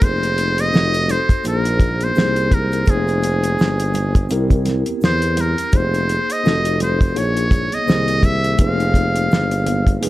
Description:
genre	hip hop, jazz-hop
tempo	84 BPM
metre	4/4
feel	swing 58% on 16ths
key	F minor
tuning	A4 = 440 Hz
part	trumpet with metal mute	melody	0.0-10.0 s	Ab4 to F5	-21 LUFS	equal	plate reverb
part	mellow tine electric piano	accompaniment	0.0-10.1 s	D#3 to Db5	-23 LUFS	left 1 dB	medium stereo tremolo, plate reverb
part	dark tuba	bass	0.0-10.1 s	F1 to E2	-20 LUFS	equal	none
part	cloth-damped thuddy drum kit	drums	0.0-10.1 s	hi-hat, kick drum, snare drum	-17 LUFS	equal	none
part	egg shaker and congas	percussion	0.0-10.1 s	none	-33 LUFS	right 6 dB	none
room	light reverb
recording	none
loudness	-15 LUFS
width	side -16 dB against mid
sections	0.0-10.1 A section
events	none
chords	0.0 Fm7; 0.7 F7b9; 1.4 Bb9sus4; 2.2 Abadd9/C; 2.9 Fm9; 4.3 C7; 5.7 Fm7; 6.4 F7b9; 7.2 Bbm11; 7.9 C7alt; 8.6 Fm9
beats	| 0.02 0.73 1.45 2.16 | 2.88 3.59 4.30 5.02 | 5.73 6.45 7.16 7.88 | 8.59 9.30 10.02

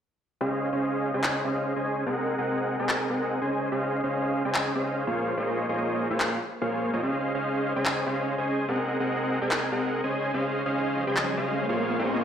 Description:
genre	future bass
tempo	145 BPM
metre	4/4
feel	swing 54% on 16ths, half-time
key	Db major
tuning	A4 = 438 Hz
part	dense compressed supersaw	riff	0.4-12.2 s	Bb3 to Ab5	-25 LUFS	equal	low-pass filter, dub echo
part	electronic handclaps	drums	1.2-11.3 s	none	-28 LUFS	left 1 dB	overdrive
part	riser	sound effects	10.8-12.2 s	none	-32 LUFS	left 1 dB	none
room	wet digital room reverb, RT60 1.1 s, digital ambience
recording	played on a big sound system in a bare room, stone room reverb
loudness	-25 LUFS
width	side -8 dB against mid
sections	0.4-12.2 A section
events	riser 10.8-12.2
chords	0.4 Dbmaj9; 2.1 Ab9/C; 3.5 Bbm11; 7.0 Dbmaj9; 8.7 Ab9/C; 10.1 Bbm11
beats	| 0.41 0.82 1.24 1.65 | 2.06 2.48 2.89 3.30 | 3.72 4.13 4.54 4.96 | 5.37 5.79 6.20 6.61 | 7.03 7.44 7.86 8.27 | 8.68 9.10 9.51 9.93 | 10.34 10.75 11.17 11.58 | 11.99

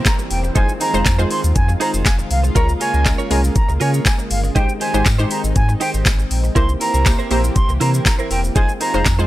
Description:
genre	dance-pop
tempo	120 BPM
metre	4/4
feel	straight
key	F minor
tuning	A4 = 441 Hz
part	lush unison pad	sustained chords	0.0-9.3 s	Db3 to G4	-26 LUFS	left 1 dB	chorus, sidechain pumping
part	direct-recorded clean electric guitar	riff	0.0-9.3 s	Eb4 to Db5	-26 LUFS	right 5 dB	analog chorus
part	downlifter	sound effects	0.0-2.6 s	none	-38 LUFS	left 1 dB	none
part	reedy silver concert flute	melody	0.1-9.2 s	F5 to C6	-23 LUFS	right 1 dB	sidechain pumping, analog delay
part	smooth R&B drum kit	drums	0.1-9.3 s	handclaps, hi-hat, kick drum, shaker, snare drum	-18 LUFS	equal	none
part	tambourine	percussion	0.1-9.2 s	none	-33 LUFS	left 4 dB	none
part	sub bass with octave	bass	0.3-9.3 s	E1 to Db3	-18 LUFS	equal	sidechain pumping
part	analog pluck	accompaniment	0.6-9.3 s	Ab3 to C5	-23 LUFS	equal	chorus, sidechain pumping
room	little or no reverb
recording	dry, gritty hardware recording, transformer saturation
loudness	-14 LUFS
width	side -15 dB against mid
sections	0.0-9.3 A section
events	none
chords	0.0 C7; 0.6 Fm7; 2.6 Db6; 4.6 Abmaj7; 6.6 C7; 8.6 Fm7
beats	0.06 | 0.56 1.06 1.56 2.06 | 2.56 3.06 3.56 4.06 | 4.56 5.06 5.56 6.06 | 6.56 7.06 7.56 8.06 | 8.56 9.06

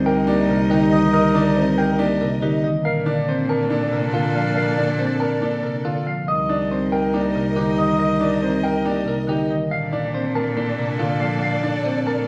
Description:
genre	classical, minimalist pattern music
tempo	140 BPM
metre	4/4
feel	straight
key	C dorian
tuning	A4 = 442 Hz
part	clean electric guitar	melody	0.0-12.3 s	G4 to A5	-28 LUFS	equal	none
part	clear clarinet	second line	0.0-12.3 s	D4 to Eb4	-30 LUFS	equal	none
part	marimba with soft mallets	accompaniment	0.0-12.1 s	C3 to C4	-27 LUFS	equal	none
part	rich chamber string section	sustained chords	0.0-12.3 s	A4 to Eb5	-32 LUFS	equal	none
part	rich cello	bass	0.0-12.3 s	C2 to Bb2	-26 LUFS	equal	none
part	bright grand piano	arpeggios	0.1-12.3 s	D4 to Bb4	-27 LUFS	equal	none
room	wet recital hall reverb, RT60 1.4 s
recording	none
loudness	-20 LUFS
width	mono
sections	0.0-12.3 A section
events	none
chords	0.0 Cm7; 2.9 Bbmaj7; 6.3 Cm7; 9.7 Bbmaj7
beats	0.28 0.71 | 1.14 1.57 1.99 2.42 | 2.85 3.28 3.71 4.14 | 4.57 4.99 5.42 5.85 | 6.28 6.71 7.14 7.57 | 7.99 8.42 8.85 9.28 | 9.71 10.14 10.57 10.99 | 11.42 11.85

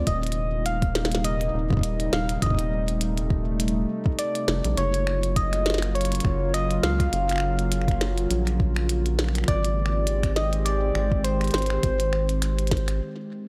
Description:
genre	IDM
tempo	102 BPM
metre	4/4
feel	swing 56% on 16ths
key	unclear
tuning	A4 = 440 Hz
part	soft struck synth lead	melody	0.0-13.5 s	C5 to F5	-31 LUFS	equal	chorus, tape echo
part	warbly tape-like pad	sustained chords	0.0-13.0 s	C3 to G4	-32 LUFS	equal	chorus, built-in reverb
part	rubbery square bass	bass	0.0-13.0 s	Eb1 to Db2	-28 LUFS	equal	tube saturation
part	electronic kick drum	drums	0.1-12.8 s	none	-26 LUFS	equal	overdrive, studio reverb
part	glitchy drum kit	drums	0.1-13.0 s	finger snaps, hi-hat, snare drum	-32 LUFS	equal	overdrive, studio reverb
room	light reverb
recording	none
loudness	-24 LUFS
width	mono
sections	0.0-13.5 A section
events	break 13.0-13.5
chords	0.1 Eb6; 4.8 Gbmaj7; 9.5 Abmaj7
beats	| 0.07 0.66 1.25 1.83 | 2.42 3.01 3.60 4.19 | 4.78 5.36 5.95 6.54 | 7.13 7.72 8.30 8.89 | 9.48 10.07 10.66 11.25 | 11.83 12.42 13.01

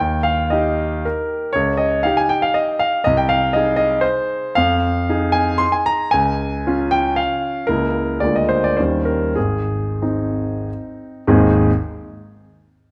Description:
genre	classical, romantic triple-time dance for piano with dotted rhythms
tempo	86-128 BPM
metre	3/4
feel	rubato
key	Ab major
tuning	A4 = 440 Hz
part	warm concert grand piano	solo	0.0-11.7 s	Ab1 to C6	-18 LUFS	equal	none
room	moderate recital hall reverb, RT60 1.5 s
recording	none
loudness	-18 LUFS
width	mono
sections	0.0-11.3 A section; 11.3-12.9 B section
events	slowing down 6.9-11.3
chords	0.0 Eb; 1.5 Eb7/Db; 3.0 Ab/C; 4.6 Fm7; 6.1 Db; 7.7 Bbm7b5/Db; 8.2 Bb7/D; 8.8 Eb7; 9.4 Ab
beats	0.51 1.04 | 1.53 2.03 2.56 | 3.05 3.53 4.03 | 4.57 5.09 5.61 | 6.12 6.65 7.18 | 7.67 8.20 8.78 | 9.37 10.02 10.68 | 11.28

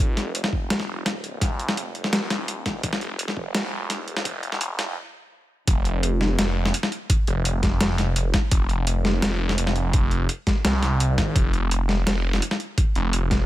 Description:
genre	half-time drum and bass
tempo	169 BPM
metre	4/4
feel	half-time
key	unclear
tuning	A4 = 440 Hz
part	phased detuned saw bass	bass	0.0-13.5 s	Eb1 to C2	-24 LUFS	equal	phaser, high-pass filter
part	boom bap sampler-style drum kit	drums	0.2-13.4 s	hi-hat, snare drum	-25 LUFS	left 1 dB	overdrive
part	electronic kick drum	drums	0.5-13.4 s	none	-22 LUFS	equal	overdrive
room	little or no reverb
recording	high-pass filter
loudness	-21 LUFS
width	side -15 dB against mid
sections	0.0-5.7 A section; 5.7-13.5 B section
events	build-up 0.0-5.7; filter sweep 0.0-5.7; stop 5.0-5.7; drop 5.7-13.5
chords	none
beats	| 0.00 0.35 0.70 1.06 | 1.42 1.77 2.12 2.48 | 2.83 3.19 3.54 3.90 | 4.26 4.61 4.97 5.32 | 5.68 6.03 6.39 6.74 | 7.10 7.45 7.81 8.16 | 8.52 8.87 9.23 9.58 | 9.94 10.29 10.65 11.00 | 11.36 11.71 12.07 12.42 | 12.78 13.13

